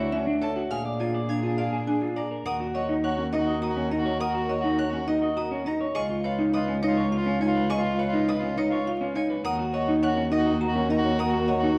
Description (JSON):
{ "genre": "classical, minimalist pattern music", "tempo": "103 BPM", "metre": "3/4", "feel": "straight", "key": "Eb minor", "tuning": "A4 = 441 Hz", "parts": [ { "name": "marimba with hard mallets", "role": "melody", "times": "0.0-11.7 s", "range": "C#5 to Bb5", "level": "-35 LUFS", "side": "equal", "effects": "none" }, { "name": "clear soprano saxophone", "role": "second line", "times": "0.0-11.8 s", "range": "F4 to G#4", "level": "-36 LUFS", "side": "equal", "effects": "none" }, { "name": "dark studio violin section", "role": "sustained chords", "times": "0.0-11.8 s", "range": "D4 to Cb5", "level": "-38 LUFS", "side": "equal", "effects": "none" }, { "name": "clean electric guitar", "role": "arpeggios", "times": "0.0-11.8 s", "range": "C#4 to E#5", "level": "-29 LUFS", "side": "equal", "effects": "none" }, { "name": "dark cello", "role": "bass", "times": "0.0-11.8 s", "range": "Db2 to A#2", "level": "-32 LUFS", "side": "equal", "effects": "none" }, { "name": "dark violin", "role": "arpeggios", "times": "0.4-11.6 s", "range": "Eb5 to G#6", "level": "-42 LUFS", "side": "equal", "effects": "none" } ], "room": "moderate recital hall reverb, RT60 1.7 s", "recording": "dark, warm production, vinyl crackle", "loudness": "-26 LUFS", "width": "mono", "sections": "0.0-2.5 A section; 2.5-11.8 B section", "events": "none", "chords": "0.0 Dadd9; 0.7 A#7; 2.5 Ebm; 6.0 Db7; 9.4 Ebm", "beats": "0.12 | 0.71 1.29 1.87 | 2.46 3.04 3.62 | 4.20 4.79 5.37 | 5.95 6.53 7.12 | 7.70 8.28 8.86 | 9.45 10.03 10.61 | 11.19 11.78" }